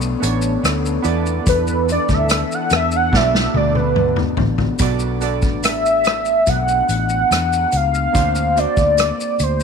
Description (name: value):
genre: indie pop, bedroom pop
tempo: 72 BPM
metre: 4/4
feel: straight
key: B minor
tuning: A4 = 440 Hz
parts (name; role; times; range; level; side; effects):
- electric guitar through a small old amp; accompaniment; 0.0-9.6 s; B2 to C#5; -26 LUFS; left 14 dB; analog chorus, vibrato effect
- warm analog keys; accompaniment; 0.0-9.6 s; A#3 to D5; -26 LUFS; right 14 dB; chorus, cassette tape
- lush unison pad; sustained chords; 0.0-4.8 s; E3 to A4; -28 LUFS; left 1 dB; chorus
- fingered electric bass; bass; 0.0-9.6 s; A1 to E2; -21 LUFS; equal; none
- unplugged drum kit; drums; 0.0-9.6 s; hi-hat, kick drum, rim click, shaker, snare drum, toms; -20 LUFS; left 1 dB; none
- warm velvety synth lead; melody; 1.5-9.6 s; B4 to F#5; -18 LUFS; equal; analog chorus, slapback echo
room: light reverb, small room ambience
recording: 1960s-style stereo with parts hard left and right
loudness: -15 LUFS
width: side -6 dB against mid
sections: 0.0-4.8 A section; 4.8-9.6 B section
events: soft synth lead solo 0.0-4.8; drum fill 3.1-4.8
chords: 0.0 Bm9; 1.1 E7sus4; 3.1 Bm7; 8.1 D7alt